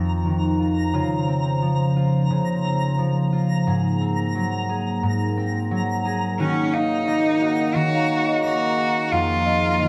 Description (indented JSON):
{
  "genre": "folktronica",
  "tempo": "88 BPM",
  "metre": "4/4",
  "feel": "swing 56% on 16ths",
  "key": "Eb dorian",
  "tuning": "A4 = 441 Hz",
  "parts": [
    { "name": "warm analog pad", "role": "sustained chords", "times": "0.0-9.9 s", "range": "Db3 to Db5", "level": "-31 LUFS", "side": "equal", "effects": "chorus" },
    { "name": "concert harp", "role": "arpeggios", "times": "0.0-9.9 s", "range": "F2 to Ab4", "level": "-24 LUFS", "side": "equal", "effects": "low-pass filter" },
    { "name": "twinkling granular texture", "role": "texture", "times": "0.0-9.9 s", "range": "Bb5", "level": "-33 LUFS", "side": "equal", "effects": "built-in reverb" },
    { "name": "bright cello", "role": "melody", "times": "6.4-9.9 s", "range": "Db4 to Gb4", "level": "-24 LUFS", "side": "equal", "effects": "none" },
    { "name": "large celesta", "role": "second line", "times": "6.7-9.9 s", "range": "Eb5 to F5", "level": "-27 LUFS", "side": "equal", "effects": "delay" }
  ],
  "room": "moderate echo chamber reverb, RT60 1.9 s, studio ambience",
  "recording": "none",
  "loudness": "-22 LUFS",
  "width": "mono",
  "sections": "0.0-9.9 A section",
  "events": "none",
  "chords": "0.0 F5; 0.9 Dbmaj7; 3.7 Ab7; 6.4 Ebm7; 9.1 Fm7"
}